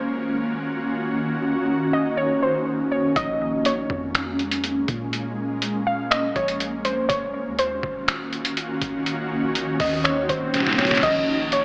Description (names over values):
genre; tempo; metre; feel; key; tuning
hip hop, atmospheric cloud-rap; 122 BPM; 4/4; half-time; unclear; A4 = 440 Hz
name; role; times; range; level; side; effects
warbly dusty pluck; melody; 0.0-11.6 s; C5 to F5; -26 LUFS; equal; chorus, low-pass filter, digital delay
ethereal airy pad; sustained chords; 0.0-11.6 s; Eb3 to Gb4; -27 LUFS; equal; ensemble chorus, built-in reverb, sidechain pumping
soft 808-style bass; bass; 3.2-11.6 s; Eb1 to Bb2; -40 LUFS; equal; none
trip hop sampler-style drum kit; drums; 3.2-11.6 s; crash cymbal, finger snaps, hi-hat, kick drum, snare drum; -27 LUFS; equal; none
swell; sound effects; 10.0-11.0 s; none; -36 LUFS; equal; none
room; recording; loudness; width
moderate lush hall reverb, RT60 2.0 s; AM radio sound; -23 LUFS; mono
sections
0.0-11.0 A section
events
swell 10.0-11.0; drum fill 10.5-11.0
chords
0.0 Ebm7; 3.2 Bbm7; 7.1 Ebm7; 11.0 Bbm7